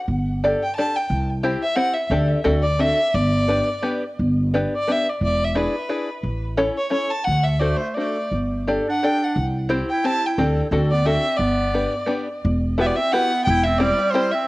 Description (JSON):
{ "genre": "musette waltz", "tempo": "175 BPM", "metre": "3/4", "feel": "swing 55% on 8ths, rubato", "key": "G major", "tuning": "A4 = 442 Hz", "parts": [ { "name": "upright bass", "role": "bass", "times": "0.1-13.9 s", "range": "E1 to D2", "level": "-22 LUFS", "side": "equal", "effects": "none" }, { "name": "open-back banjo", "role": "accompaniment", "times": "0.4-14.3 s", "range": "B3 to D5", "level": "-22 LUFS", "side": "left 1 dB", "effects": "cassette tape, plate reverb" }, { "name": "clear violin", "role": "melody", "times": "0.6-14.5 s", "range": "B4 to A5", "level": "-23 LUFS", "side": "equal", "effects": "cassette tape, tape echo" }, { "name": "bright clarinet", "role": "second line", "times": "7.6-14.5 s", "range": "G3 to E4", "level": "-26 LUFS", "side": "right 2 dB", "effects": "cassette tape, plate reverb, tape echo" } ], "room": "moderate studio reverb, RT60 0.6 s", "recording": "home recording on cassette", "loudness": "-18 LUFS", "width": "side -20 dB against mid", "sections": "0.0-4.2 A section; 4.2-12.4 A section; 12.4-14.5 B section", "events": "none", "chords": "0.1 Gsus2; 1.1 C; 2.1 D7sus4; 2.5 D7; 3.1 G; 5.2 E7; 6.2 A; 7.3 D7; 8.3 Gsus2; 9.4 C; 10.4 D7sus4; 10.7 D7; 11.4 G; 12.4 Emadd9; 13.5 C/E" }